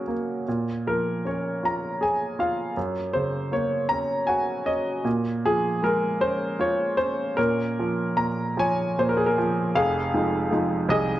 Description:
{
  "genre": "classical, lyrical solo piano",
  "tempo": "52 BPM (dotted quarters)",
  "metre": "6/8",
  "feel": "rubato",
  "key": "Bb minor",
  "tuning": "A4 = 441 Hz",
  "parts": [
    { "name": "bright baby grand piano", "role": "solo", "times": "0.0-11.2 s", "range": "F1 to Bb5", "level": "-22 LUFS", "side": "equal", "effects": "none" }
  ],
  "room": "wet spring reverb, RT60 1.5 s, small room ambience",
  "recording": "dark, warm production",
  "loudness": "-22 LUFS",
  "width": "side -14 dB against mid",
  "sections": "0.0-9.8 A section; 9.8-11.2 B section",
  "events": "none",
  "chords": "0.5 Bbm7; 2.8 Gb; 5.1 Bbm7; 9.8 Fm7",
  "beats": "| 0.47 1.63 | 2.77 3.90 | 5.06 6.21 | 7.38 8.57 | 9.75 10.89"
}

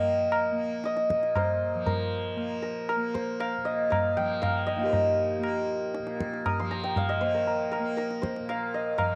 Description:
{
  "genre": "indian classical, Hindustani",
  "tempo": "118 BPM",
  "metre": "5/4",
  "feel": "straight",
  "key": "Bb raga durga",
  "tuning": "A4 = 440 Hz",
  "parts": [
    { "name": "santur", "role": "melody", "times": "0.0-9.2 s", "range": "Eb4 to Eb6", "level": "-30 LUFS", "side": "equal", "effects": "none" },
    { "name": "tanpura", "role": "drone", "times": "0.0-9.2 s", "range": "Bb2 to Bb3", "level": "-37 LUFS", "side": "equal", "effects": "none" },
    { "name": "tabla", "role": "percussion", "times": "0.3-9.2 s", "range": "none", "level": "-34 LUFS", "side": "equal", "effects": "none" }
  ],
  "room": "moderate echo chamber reverb, RT60 2.6 s",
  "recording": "none",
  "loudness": "-28 LUFS",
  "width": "mono",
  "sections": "0.0-9.2 A section",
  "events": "none",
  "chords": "none",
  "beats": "0.32 0.84 1.35 1.86 | 2.38 2.89 3.40 3.91 4.42 | 4.93 5.44 5.95 6.46 6.96 | 7.47 7.98 8.48 8.99"
}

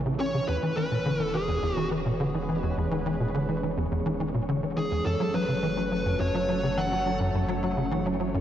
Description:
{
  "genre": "ambient, sequencer-driven space music",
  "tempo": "105 BPM",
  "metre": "4/4",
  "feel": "straight",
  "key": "unclear",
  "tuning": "A4 = 440 Hz",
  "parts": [
    { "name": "sweeping resonant pad", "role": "sustained chords", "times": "0.0-8.4 s", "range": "E3 to C#5", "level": "-34 LUFS", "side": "equal", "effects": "chorus" },
    { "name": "tight sequencer bass", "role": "riff", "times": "0.0-8.4 s", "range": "E2 to C#4", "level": "-28 LUFS", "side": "equal", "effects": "ensemble chorus, tape echo" },
    { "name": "warm sub bass", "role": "bass", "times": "0.0-8.4 s", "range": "E1 to A1", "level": "-38 LUFS", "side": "equal", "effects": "none" },
    { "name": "wind-like tuned noise texture", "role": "texture", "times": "0.0-8.4 s", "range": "C#4 to C#5", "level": "-36 LUFS", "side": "equal", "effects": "built-in reverb" },
    { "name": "fuzz lead guitar", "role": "melody", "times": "0.2-7.2 s", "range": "G#4 to F#5", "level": "-30 LUFS", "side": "equal", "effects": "distortion, tape echo" }
  ],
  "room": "wet lush hall reverb, RT60 2.7 s",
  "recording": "worn, warbling old tape, cassette tape, warbly pitch drift",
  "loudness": "-25 LUFS",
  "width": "side -10 dB against mid",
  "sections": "0.0-8.4 A section",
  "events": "none",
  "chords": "0.5 E; 5.1 F#m",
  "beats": "| 0.49 1.06 1.63 2.20 | 2.77 3.34 3.91 4.49 | 5.06 5.63 6.20 6.77 | 7.34 7.91"
}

